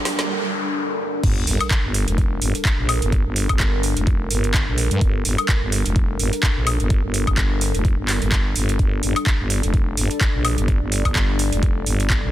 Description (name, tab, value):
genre	bass house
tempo	127 BPM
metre	4/4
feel	swing 56% on 16ths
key	G minor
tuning	A4 = 440 Hz
part	dark analog pad	sustained chords	0.0-12.3 s	G3 to D5	-27 LUFS	equal	chorus, phaser, sidechain pumping
part	riser, noise sweep and sub drop	sound effects	0.0-3.1 s	none	-28 LUFS	left 1 dB	none
part	garage drum kit	drums	0.1-12.2 s	crash cymbal, handclaps, hi-hat, snare drum, woodblock	-24 LUFS	equal	overdrive
part	growling FM bass	bass	1.2-12.3 s	F1 to G2	-21 LUFS	equal	tube saturation, sidechain pumping
part	electronic kick drum	drums	1.2-12.2 s	none	-19 LUFS	equal	overdrive
room	digital ambience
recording	dense, heavily limited modern master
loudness	-18 LUFS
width	side -13 dB against mid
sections	0.0-1.2 A section; 1.2-12.3 B section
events	build-up 0.0-1.2; drum fill 0.0; riser 0.0; noise sweep 0.0-1.2; filter sweep on analog synth pad 0.0-1.2; break 0.3-1.2; drop 1.2-12.3; impact 1.2-3.1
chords	0.0 Gmadd9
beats	0.29 0.76 | 1.24 1.71 2.18 2.65 | 3.12 3.60 4.07 4.54 | 5.01 5.49 5.96 6.43 | 6.90 7.38 7.85 8.32 | 8.79 9.27 9.74 10.21 | 10.68 11.16 11.63 12.10